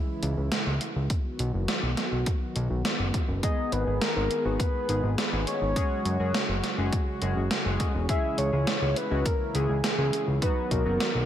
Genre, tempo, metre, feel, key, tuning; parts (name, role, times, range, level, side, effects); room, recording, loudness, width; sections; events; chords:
synthwave; 103 BPM; 4/4; straight; B major; A4 = 440 Hz
warm analog pad; sustained chords; 0.0-11.3 s; C#3 to G#4; -34 LUFS; right 1 dB; chorus, sidechain pumping
fat analog bass; bass; 0.2-11.3 s; E1 to F#2; -27 LUFS; equal
gated 80s digital drum machine; drums; 0.2-11.1 s; hi-hat, snare drum; -30 LUFS; right 1 dB; gated reverb, gated reverb snare, overdrive
electronic kick drum; drums; 1.1-10.8 s; -28 LUFS; equal; overdrive
soft octave-layered synth lead; melody; 3.4-11.3 s; G#4 to E5; -30 LUFS; left 1 dB; chorus, digital delay
chorused polysynth; stabs; 3.4-11.0 s; F#3 to G#4; -34 LUFS; left 3 dB; cassette tape, digital delay
light reverb; -24 LUFS; side -10 dB against mid
0.0-11.3 A section
0.0 C#m; 1.1 B; 3.4 G#m; 5.8 F#sus2; 8.1 C#m; 10.4 B